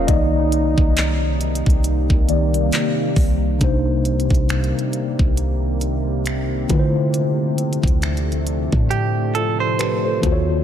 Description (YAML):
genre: contemporary R&B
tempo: 68 BPM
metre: 4/4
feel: swing 58% on 16ths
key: C dorian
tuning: A4 = 438 Hz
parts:
  - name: mellow tine electric piano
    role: accompaniment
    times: 0.0-10.6 s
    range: C3 to F5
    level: -22 LUFS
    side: left 1 dB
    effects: medium stereo tremolo
  - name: deep dark ambient pad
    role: sustained chords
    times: 0.0-10.6 s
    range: C3 to Eb4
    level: -25 LUFS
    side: right 1 dB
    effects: chorus, built-in reverb
  - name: clean 808-style bass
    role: bass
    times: 0.0-10.6 s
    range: C2 to D3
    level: -21 LUFS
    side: equal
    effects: none
  - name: trap drum kit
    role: drums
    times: 0.1-10.5 s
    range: finger snaps, handclaps, hi-hat, kick drum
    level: -21 LUFS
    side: equal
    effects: none
  - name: direct-recorded clean electric guitar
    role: arpeggios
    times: 8.9-10.2 s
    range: G4 to C5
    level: -23 LUFS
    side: right 8 dB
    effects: ping-pong delay
room: digital ambience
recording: lossy compression artefacts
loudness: -16 LUFS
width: side -10 dB against mid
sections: 0.0-3.6 A section; 3.6-10.6 B section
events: tine electric piano solo 0.0-3.6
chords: 0.1 Cm7; 6.7 Dm7